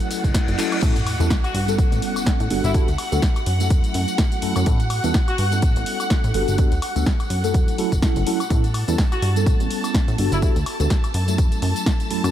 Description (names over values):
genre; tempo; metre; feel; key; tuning
filtered disco house; 125 BPM; 4/4; swing 57% on 16ths; A mixolydian; A4 = 441 Hz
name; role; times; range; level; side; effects
mellow tine electric piano; accompaniment; 0.0-12.3 s; F#3 to A4; -26 LUFS; equal; medium stereo tremolo, phaser, sidechain pumping, low-pass filter
string machine, full ensemble; sustained chords; 0.0-12.3 s; F#5 to A5; -29 LUFS; equal; ensemble chorus, sidechain pumping, low-pass filter
punchy analog drum machine; drums; 0.0-12.3 s; crash cymbal, handclaps, hi-hat, snare drum, tambourine, woodblock; -28 LUFS; left 1 dB; sidechain pumping on hats, sidechain pumping on perc, sidechain pumping on cymbals
reverse cymbal and sub drop; sound effects; 0.1-2.7 s; none; -32 LUFS; left 2 dB; none
plucky analog bass; bass; 0.2-12.3 s; F#1 to A2; -22 LUFS; equal; sidechain pumping, low-pass filter
electronic kick drum; drums; 0.2-12.0 s; none; -20 LUFS; equal; none
warm horn section; melody; 1.4-5.5, 9.1-10.5 s; E4 to F#4; -34 LUFS; left 1 dB; sidechain pumping, low-pass filter, tape echo
room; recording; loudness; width
light reverb; none; -18 LUFS; side -11 dB against mid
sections
0.8-12.3 A section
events
reverse cymbal 0.1-0.8; drum fill 0.6; band accent 0.6; drop 0.8-12.3; impact 0.8-2.7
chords
0.0 F#m7; 0.8 A7; 2.5 Gmaj7; 3.5 F#m7; 4.7 A7; 6.3 Gmaj7; 7.3 F#m7; 8.5 A7; 10.2 Gmaj7; 11.1 F#m7